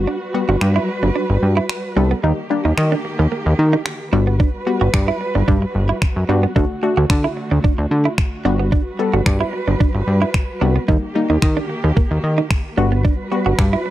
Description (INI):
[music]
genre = dance-pop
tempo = 111 BPM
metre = 4/4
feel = straight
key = G major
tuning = A4 = 440 Hz
[part]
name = wide unison pluck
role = accompaniment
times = 0.0-13.9 s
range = G3 to A4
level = -22 LUFS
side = left 4 dB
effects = sidechain pumping
[part]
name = dark studio string section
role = sustained chords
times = 0.0-13.9 s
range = D3 to B4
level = -26 LUFS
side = right 1 dB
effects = sidechain pumping
[part]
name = plucky analog bass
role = bass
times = 0.0-13.8 s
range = G1 to Eb3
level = -16 LUFS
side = equal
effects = sidechain pumping
[part]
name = direct-recorded clean electric guitar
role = riff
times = 0.1-13.9 s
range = Bb3 to F#4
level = -22 LUFS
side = right 7 dB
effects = wide subtle chorus
[part]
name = detuned 8-bit digital drum machine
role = drums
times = 0.6-13.7 s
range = finger snaps, kick drum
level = -17 LUFS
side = equal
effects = none
[sound]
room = little or no reverb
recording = dry, close 1970s-style studio recording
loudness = -15 LUFS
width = side -14 dB against mid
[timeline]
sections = 0.0-13.9 A section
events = none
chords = 0.0 Gmaj7; 2.2 Eb; 4.1 Gmaj7; 6.6 D; 8.5 Gmaj7; 10.9 Eb; 12.8 Gmaj7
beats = | 0.07 0.61 1.16 1.70 | 2.24 2.78 3.32 3.86 | 4.40 4.94 5.48 6.02 | 6.56 7.10 7.64 8.18 | 8.72 9.26 9.80 10.34 | 10.88 11.43 11.97 12.51 | 13.05 13.59